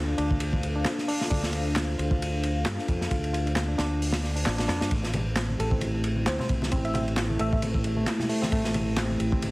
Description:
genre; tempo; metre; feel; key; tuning
breakbeat, breaks; 133 BPM; 4/4; swing 55% on 16ths; A minor; A4 = 440 Hz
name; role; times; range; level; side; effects
dark analog pad; sustained chords; 0.0-9.5 s; A3 to F5; -33 LUFS; equal; chorus, sidechain pumping
reed electric piano; riff; 0.0-9.5 s; A3 to D5; -32 LUFS; equal; fast tremolo, vintage 12-bit sampler grit, digital delay
modern bright fingered electric bass; bass; 0.0-9.5 s; A1 to G2; -29 LUFS; equal; tube saturation
crunchy breakbeat drum kit; drums; 0.2-9.5 s; hi-hat, kick drum, ride cymbal, snare drum; -29 LUFS; equal; none
electronic handclaps; drums; 0.9-9.1 s; none; -34 LUFS; equal; overdrive
congas; percussion; 5.1-9.5 s; none; -34 LUFS; left 1 dB; none
bell-like FM electric piano; melody; 5.6-7.6 s; A4 to E5; -34 LUFS; equal; chorus, tremolo, telephone sound, digital delay
room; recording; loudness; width
wet studio ambience, RT60 0.5 s; heavily compressed radio sound, vinyl crackle; -24 LUFS; side -21 dB against mid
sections
0.0-9.5 A section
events
kick drops out 4.0-4.9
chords
0.0 Dm7; 4.9 Am7

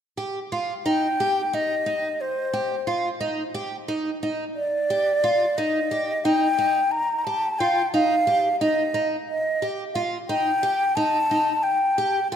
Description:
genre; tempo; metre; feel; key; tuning
progressive instrumental, progressive; 178 BPM (eighths); 7/8; straight; unclear; A4 = 440 Hz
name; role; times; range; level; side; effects
picked twelve-string acoustic guitar; arpeggios; 0.2-12.4 s; Eb4 to G4; -26 LUFS; right 1 dB; none
mellow hollow concert flute; melody; 0.9-12.4 s; C5 to Bb5; -22 LUFS; left 1 dB; tape echo
room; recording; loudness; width
moderate lush hall reverb, RT60 2.3 s; rough home demo mix; -21 LUFS; side -8 dB against mid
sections
0.0-12.4 A section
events
none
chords
0.0 Ebadd9

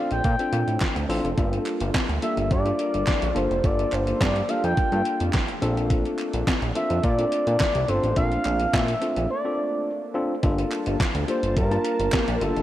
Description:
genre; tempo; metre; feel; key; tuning
early-eighties boogie funk; 106 BPM; 4/4; straight; G minor; A4 = 440 Hz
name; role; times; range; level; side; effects
expressive synth lead; melody; 0.0-12.6 s; A4 to G5; -26 LUFS; equal; chorus, slapback echo
tine electric piano; accompaniment; 0.0-12.6 s; Bb3 to A5; -28 LUFS; left 2 dB; none
warm analog pad; sustained chords; 0.0-12.6 s; G3 to A5; -36 LUFS; right 1 dB; chorus
fat analog bass; bass; 0.1-12.6 s; F1 to Bb2; -26 LUFS; equal; none
detuned 8-bit digital drum machine; drums; 0.1-12.6 s; handclaps, hi-hat, kick drum, snare drum; -26 LUFS; equal; overdrive
group handclap; percussion; 0.8-12.3 s; none; -37 LUFS; right 3 dB; none
mellow synth brass; second line; 1.8-5.3, 10.9-12.4 s; Bb3 to Bb4; -35 LUFS; equal; none
room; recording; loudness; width
moderate lush hall reverb, RT60 2.1 s; big arena sound, cassette tape; -21 LUFS; side -13 dB against mid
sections
0.0-10.4 A section; 10.4-12.6 A section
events
break 9.3-10.4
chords
0.0 Bbmaj9; 1.4 Gm9; 5.6 Bbmaj9; 10.4 Gm9

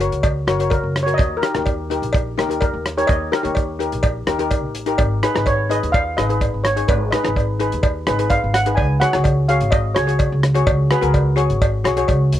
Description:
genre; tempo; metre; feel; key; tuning
calypso; 126 BPM; 4/4; straight; unclear; A4 = 441 Hz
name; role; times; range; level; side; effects
steel pan; accompaniment; 0.0-12.3 s; D#4 to C#5; -22 LUFS; left 3 dB; none
upright bass; bass; 0.0-12.4 s; F#1 to D#2; -21 LUFS; equal; none
damped 70s drum kit; drums; 0.0-12.4 s; hi-hat, kick drum, rim click; -21 LUFS; equal; none
cowbell; percussion; 0.2-12.2 s; none; -23 LUFS; right 1 dB; none
steel pan; melody; 0.7-10.4 s; A#4 to G#5; -22 LUFS; right 1 dB; none
room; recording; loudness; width
light reverb; worn, warbling old tape, cassette tape, warbly pitch drift; -16 LUFS; side -12 dB against mid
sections
0.0-12.4 A section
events
steel pan solo 0.0-12.4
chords
0.0 F#; 1.2 D#; 5.0 G#m; 8.8 C#sus4

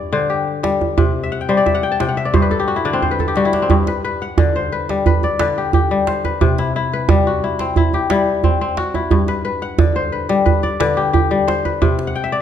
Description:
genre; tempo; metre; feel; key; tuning
west african traditional, West African string and xylophone music; 89 BPM; 4/4; straight; G major; A4 = 440 Hz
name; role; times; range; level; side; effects
kora; arpeggios; 0.0-12.4 s; G2 to A5; -17 LUFS; left 4 dB; none
djembe; percussion; 0.1-12.2 s; none; -18 LUFS; right 4 dB; none
room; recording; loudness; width
moderate recital hall reverb, RT60 1.6 s; dark, warm production; -15 LUFS; side -9 dB against mid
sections
0.0-3.7 A section; 3.7-12.4 B section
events
kora fill 1.2-3.7, 12.1-12.4; drum fill 3.0-3.7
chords
0.0 G5; 1.0 C5; 2.3 G5; 6.4 C; 9.1 G; 11.8 C5

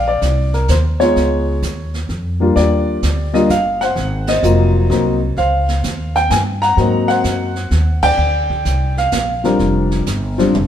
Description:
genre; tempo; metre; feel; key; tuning
jazz piano trio; 128 BPM; 3/4; swing 67% on 8ths; Bb major; A4 = 440 Hz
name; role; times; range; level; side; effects
warm baby grand piano; melody; 0.0-10.5 s; F3 to Bb5; -16 LUFS; left 1 dB; none
upright bass; bass; 0.0-10.7 s; F1 to Ab2; -17 LUFS; equal; none
jazz brush drum kit; drums; 0.2-10.7 s; brushed snare drum, hi-hat, kick drum, ride cymbal, snare drum, toms; -26 LUFS; right 4 dB; none
room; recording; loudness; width
wet stone room reverb, RT60 1.3 s; band playing live in one room; -13 LUFS; side -10 dB against mid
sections
0.0-10.7 A section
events
band accent 4.2, 7.9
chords
0.0 Bbadd9; 1.2 Db9; 2.6 Ebmaj9; 4.0 Ab13; 5.4 Dbmaj9#11; 6.8 Ab9; 8.2 Bb69

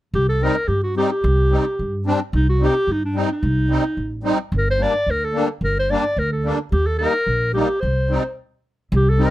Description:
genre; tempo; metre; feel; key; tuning
klezmer; 109 BPM; 2/4; straight; C dorian sharp4; A4 = 440 Hz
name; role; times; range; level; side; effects
mellow clarinet; melody; 0.1-9.3 s; D4 to D5; -21 LUFS; equal; none
upright bass; bass; 0.1-9.2 s; G1 to G2; -20 LUFS; equal; none
musette accordion; accompaniment; 0.4-9.3 s; G3 to Eb4; -22 LUFS; left 1 dB; none
room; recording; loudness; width
little or no reverb; close, detailed microphones; -17 LUFS; side -15 dB against mid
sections
0.1-8.9 A section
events
stop 8.4-8.9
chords
0.1 Cm; 4.5 Gm; 6.7 Eb; 7.8 C5

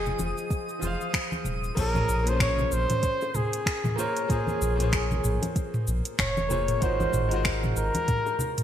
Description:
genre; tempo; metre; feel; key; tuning
sunset chillout; 95 BPM; 4/4; swing 58% on 16ths; Bb minor; A4 = 440 Hz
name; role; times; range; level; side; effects
trumpet with bucket mute; melody; 0.0-8.6 s; Ab4 to Db5; -29 LUFS; equal; digital delay
clear concert grand piano; accompaniment; 0.0-8.6 s; F3 to F5; -33 LUFS; equal; auto-pan, digital delay
warm sub bass; bass; 0.0-7.9 s; Eb1 to Bb1; -29 LUFS; equal; none
twinkling granular texture; texture; 0.0-1.8 s; Eb6; -39 LUFS; left 1 dB; built-in reverb
smooth R&B drum kit; drums; 0.1-8.6 s; cabasa, crash cymbal, finger snaps, hi-hat, toms; -30 LUFS; equal; overdrive, gated reverb
congas and bongos; percussion; 0.1-8.5 s; none; -35 LUFS; left 2 dB; none
electronic kick drum; drums; 0.5-8.2 s; none; -28 LUFS; equal; overdrive
room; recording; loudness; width
moderate lush hall reverb, RT60 1.9 s, digital ambience; bright 1980s-style digital production; -24 LUFS; side -10 dB against mid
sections
0.0-1.8 A section; 1.8-8.6 B section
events
none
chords
0.0 Fm7; 1.8 Bbm9; 6.8 Ab13

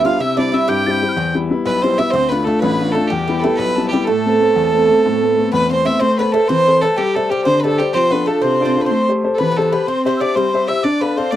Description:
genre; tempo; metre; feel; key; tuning
celtic folk, Celtic slide; 124 BPM (dotted quarters); 12/8; straight; A minor; A4 = 440 Hz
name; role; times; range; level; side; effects
clear fiddle; melody; 0.0-11.4 s; G4 to G5; -18 LUFS; right 1 dB; none
Irish bouzouki; second line; 0.0-11.4 s; G3 to G4; -21 LUFS; right 7 dB; none
breathy mellow tin whistle; second line; 0.0-11.4 s; G5 to A6; -25 LUFS; left 5 dB; none
clear upright piano; accompaniment; 0.0-11.4 s; A1 to F5; -17 LUFS; left 3 dB; none
room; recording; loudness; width
light reverb; dry, close 1970s-style studio recording; -14 LUFS; side -12 dB against mid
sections
0.0-6.0 A section; 6.0-11.4 A section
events
none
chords
0.2 C; 1.2 Em; 2.1 Dm; 3.1 Em; 4.1 Amadd9; 7.0 Gsus4; 7.9 F6; 8.9 Am7; 9.9 C; 10.8 Dm

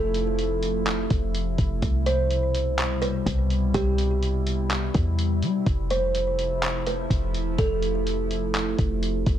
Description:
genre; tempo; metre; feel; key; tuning
hip hop, atmospheric cloud-rap; 125 BPM; 4/4; half-time; unclear; A4 = 439 Hz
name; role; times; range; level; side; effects
kalimba; melody; 0.0-8.5 s; G4 to C5; -28 LUFS; right 2 dB; low-pass filter, ping-pong delay
warbly tape-like pad; sustained chords; 0.0-9.4 s; B2 to E4; -29 LUFS; equal; chorus, built-in reverb, phaser
warm 808-style bass; bass; 0.0-9.4 s; E1 to G3; -26 LUFS; equal; none
lo-fi sampler-style drum kit; drums; 0.1-9.4 s; handclaps, hi-hat, kick drum; -27 LUFS; equal; none
room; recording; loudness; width
light reverb, digital ambience; none; -22 LUFS; side -10 dB against mid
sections
0.0-9.4 A section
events
none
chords
0.0 Fmaj7; 1.8 Cmaj7; 5.7 Fmaj7

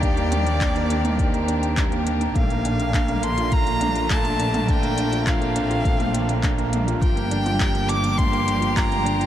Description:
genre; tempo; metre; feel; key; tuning
piano and strings electronica; 103 BPM; 4/4; straight; Bb major; A4 = 440 Hz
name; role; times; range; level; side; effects
warm violin; melody; 0.0-9.3 s; D5 to D6; -27 LUFS; equal; tape echo
rich string quartet; sustained chords; 0.0-9.3 s; D3 to G4; -29 LUFS; left 2 dB; sidechain pumping
felt-muted upright piano; riff; 0.0-9.3 s; G3 to F4; -26 LUFS; right 2 dB; tape echo
dark chamber double bass section; bass; 0.0-9.3 s; G1 to Eb2; -25 LUFS; equal; tube saturation, sidechain pumping
electronic kick drum; drums; 0.0-8.9 s; none; -22 LUFS; equal; none
organic electronic drum kit; drums; 0.0-9.3 s; handclaps, hi-hat, toms; -30 LUFS; equal; none
room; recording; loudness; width
moderate huge ambient reverb, RT60 8.3 s; dreamy mix soaked in reverb; -19 LUFS; side -11 dB against mid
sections
0.0-9.3 A section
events
none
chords
0.0 Ebmaj7; 2.4 Bbmaj7; 7.0 Gm7

